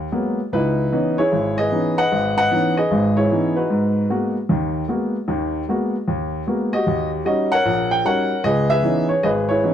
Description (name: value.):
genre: solo jazz.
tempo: 151 BPM.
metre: 4/4.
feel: swing 64% on 8ths.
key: G# minor.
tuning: A4 = 440 Hz.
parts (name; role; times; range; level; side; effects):
warm upright piano; solo; 0.0-9.7 s; G#1 to G5; -17 LUFS; equal; none.
room: light reverb.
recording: dark, warm production.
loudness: -17 LUFS.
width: side -9 dB against mid.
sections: 0.0-9.7 A section.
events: none.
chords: 0.0 G#m9; 0.5 C#m9; 3.7 G#m9; 6.9 D#7#9; 8.4 C#m9.